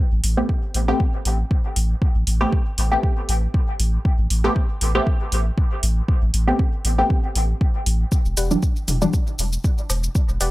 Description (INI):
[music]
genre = dub techno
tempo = 118 BPM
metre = 4/4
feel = swing 54% on 16ths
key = A minor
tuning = A4 = 440 Hz
[part]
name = warm sub bass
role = bass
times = 0.1-10.5 s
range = E1 to A1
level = -20 LUFS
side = equal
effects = sidechain pumping
[part]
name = electronic hi-hat and shaker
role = drums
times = 0.2-10.5 s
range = none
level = -26 LUFS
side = equal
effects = none
[part]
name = filtered dub chord stab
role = stabs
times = 0.4-9.1 s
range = E3 to G4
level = -24 LUFS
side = equal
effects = chorus, phaser, sidechain pumping, dub echo
[part]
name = electronic kick drum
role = drums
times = 0.5-10.3 s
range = none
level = -20 LUFS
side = equal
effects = none
[part]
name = warbly dusty pluck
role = riff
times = 8.4-10.5 s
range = G4 to F#5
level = -28 LUFS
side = left 3 dB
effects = chorus, sidechain pumping, dub echo
[part]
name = electronic toms and woodblock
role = percussion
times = 8.9-10.0 s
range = none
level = -29 LUFS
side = equal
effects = sidechain pumping on perc, sidechain pumping on toms, dub echo
[sound]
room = little or no reverb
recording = none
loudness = -18 LUFS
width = side -18 dB against mid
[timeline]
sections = 0.0-10.5 A section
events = filter sweep on synth stab 0.0-10.5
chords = 0.0 Am9; 8.1 Em9